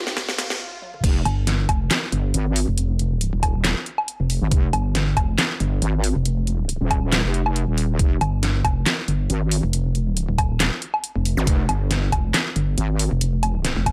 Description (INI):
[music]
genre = heavy wobble dubstep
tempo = 138 BPM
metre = 4/4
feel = swing 55% on 16ths, half-time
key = unclear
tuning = A4 = 439 Hz
[part]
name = supersaw chords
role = sustained chords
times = 0.0-0.6 s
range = Eb2 to G4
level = -37 LUFS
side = equal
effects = none
[part]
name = riser, swell and zap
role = sound effects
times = 0.0-1.0, 11.4-11.5 s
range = none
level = -34 LUFS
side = equal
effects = none
[part]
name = dubstep drum kit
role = drums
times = 0.1-13.9 s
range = crash cymbal, handclaps, hi-hat, snare drum, toms, woodblock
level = -25 LUFS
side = equal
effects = overdrive
[part]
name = electronic kick drum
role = drums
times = 0.2-13.9 s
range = none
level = -23 LUFS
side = equal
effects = none
[part]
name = wobble bass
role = bass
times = 1.0-13.1 s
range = Eb1 to Ab1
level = -23 LUFS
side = equal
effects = chorus, overdrive
[part]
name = pulsing pluck wobble bass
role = bass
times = 1.3-13.9 s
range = Eb1 to G1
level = -23 LUFS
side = equal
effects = chorus, overdrive
[sound]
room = digital ambience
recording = high-pass filter, faint mains hum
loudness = -22 LUFS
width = mono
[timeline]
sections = 0.0-1.0 A section; 1.0-13.9 B section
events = build-up 0.0-1.0; drum fill 0.0-0.6, 0.8; riser 0.0-0.6; filter sweep 0.0-1.0; swell 0.2-1.0; stop 0.6-1.0; drop 1.0-13.9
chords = 0.0 Ebadd9; 1.0 N.C.